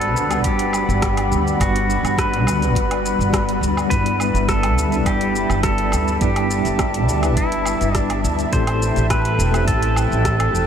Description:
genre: sunset chillout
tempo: 104 BPM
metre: 4/4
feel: straight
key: unclear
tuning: A4 = 440 Hz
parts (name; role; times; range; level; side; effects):
- pedal steel guitar; melody; 0.0-10.7 s; E4 to C5; -23 LUFS; equal; vintage 12-bit sampler grit, ping-pong delay
- bright tine electric piano; accompaniment; 0.0-10.7 s; G3 to F#5; -24 LUFS; moving between left 6 dB and right 5 dB; fast stereo tremolo, auto-pan, ping-pong delay
- airy breathy pad; sustained chords; 0.0-10.7 s; G3 to B5; -24 LUFS; left 1 dB; chorus
- upright bass; bass; 0.0-10.7 s; E1 to D2; -21 LUFS; equal; none
- deep house drum kit; drums; 0.0-10.7 s; hi-hat, rim click, shaker, woodblock; -27 LUFS; right 1 dB; none
- electronic kick drum; drums; 0.4-10.4 s; none; -23 LUFS; equal; none
room: moderate huge ambient reverb, RT60 9.0 s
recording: dreamy mix soaked in reverb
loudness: -16 LUFS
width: side -8 dB against mid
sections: 0.0-10.7 A section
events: none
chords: 0.0 Gmaj7; 3.9 Em7/G; 8.5 Am7

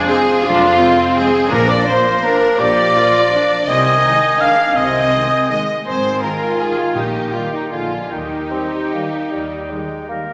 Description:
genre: classical, orchestral ballroom waltz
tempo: 142-179 BPM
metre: 3/4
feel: rubato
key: Eb major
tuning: A4 = 440 Hz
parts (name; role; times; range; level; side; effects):
- rich studio violin section; melody; 0.0-10.1 s; Eb4 to F5; -27 LUFS; equal; none
- clear oboe; second line; 0.0-10.3 s; Bb4 to C6; -27 LUFS; equal; none
- rich studio violin section; second line; 0.0-10.1 s; Eb4 to F5; -28 LUFS; equal; none
- rich studio viola section; accompaniment; 0.0-10.3 s; Ab3 to G4; -24 LUFS; equal; none
- warm bassoon; accompaniment; 0.0-10.3 s; D3 to C4; -27 LUFS; equal; none
- dark French horn section; sustained chords; 0.0-10.1 s; Eb4 to F5; -23 LUFS; equal; none
- mellow hollow silver concert flute; second line; 0.1-10.1 s; Eb5 to F6; -23 LUFS; equal; none
- warm clarinet; second line; 0.1-10.1 s; Eb4 to F5; -24 LUFS; equal; none
- warm trombone section; sustained chords; 0.1-10.2 s; D3 to Bb3; -31 LUFS; equal; none
- dark tuba; bass; 0.4-9.6 s; F1 to Eb2; -36 LUFS; equal; none
- rich studio double bass section; bass; 0.4-9.6 s; F1 to Eb2; -31 LUFS; equal; none
- clear studio cello section; bass; 0.5-9.6 s; F2 to Eb3; -30 LUFS; equal; none
- timpani; percussion; 1.5-2.0, 7.0-7.5 s; Bb2; -30 LUFS; equal; none
room: wet recital hall reverb, RT60 1.6 s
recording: none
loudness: -16 LUFS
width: mono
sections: 0.0-10.3 A section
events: none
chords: 0.0 Fm; 1.5 Bb; 3.7 Ab/C; 5.9 Ab; 7.0 Eb/Bb; 7.7 Bb7; 8.1 Eb

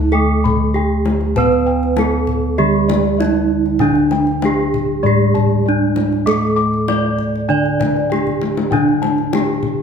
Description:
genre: Javanese gamelan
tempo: 98 BPM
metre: 4/4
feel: straight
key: D pelog barang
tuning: A4 = 441 Hz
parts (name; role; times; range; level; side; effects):
- gamelan-type bronze metallophone; melody; 0.0-9.8 s; D4 to D5; -19 LUFS; right 2 dB; none
- gamelan-type bronze metallophone; accompaniment; 0.0-9.8 s; D3 to D4; -20 LUFS; right 4 dB; none
- gamelan-type bossed gongs; bass; 0.0-9.8 s; D2 to B4+20c; -19 LUFS; left 2 dB; none
- gamelan-type bossed gongs; arpeggios; 0.1-9.7 s; D5 to D6; -24 LUFS; left 7 dB; none
- kendang; percussion; 0.5-9.8 s; none; -23 LUFS; left 4 dB; none
room: moderate recital hall reverb, RT60 1.4 s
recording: close, detailed microphones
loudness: -14 LUFS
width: side -6 dB against mid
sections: 0.0-9.8 A section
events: drum fill 8.3-8.7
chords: none

